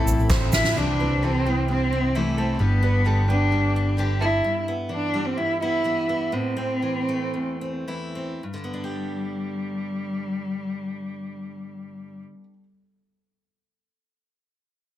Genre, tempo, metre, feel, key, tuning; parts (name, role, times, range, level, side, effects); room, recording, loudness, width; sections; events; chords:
indie folk with a building arrangement; 104-131 BPM; 4/4; straight; G major; A4 = 440 Hz
warm cello; melody; 0.0-12.2 s; G3 to E4; -26 LUFS; equal
warm trombone; second line; 0.0-0.5 s; A3; -38 LUFS; left 4 dB
picked steel-string acoustic guitar; accompaniment; 0.0-4.4 s; A2 to C5; -31 LUFS; left 5 dB
pedal harmonium; sustained chords; 0.0-0.7 s; C4 to B5; -35 LUFS; right 1 dB
ukulele; arpeggios; 0.0-4.4 s; G4 to C5; -33 LUFS; right 4 dB
picked electric bass; bass; 0.0-4.4 s; G1 to C2; -23 LUFS; equal
tube shaker; percussion; 0.1-0.7 s; -36 LUFS; right 9 dB
soft-mallet drum kit; drums; 0.3-0.7 s; kick drum, snare drum; -24 LUFS; equal
fingerpicked steel-string acoustic guitar; accompaniment; 0.8-12.6 s; E2 to G4; -31 LUFS; left 1 dB
light reverb, small room ambience; dense, heavily limited modern master; -22 LUFS; side -12 dB against mid
0.8-8.4 A section; 8.4-13.0 B section
drum fill 0.3-0.8; slowing down 4.4-8.4
0.0 Amadd9; 0.8 C; 2.6 G; 4.4 Em/G; 6.3 Am; 8.4 G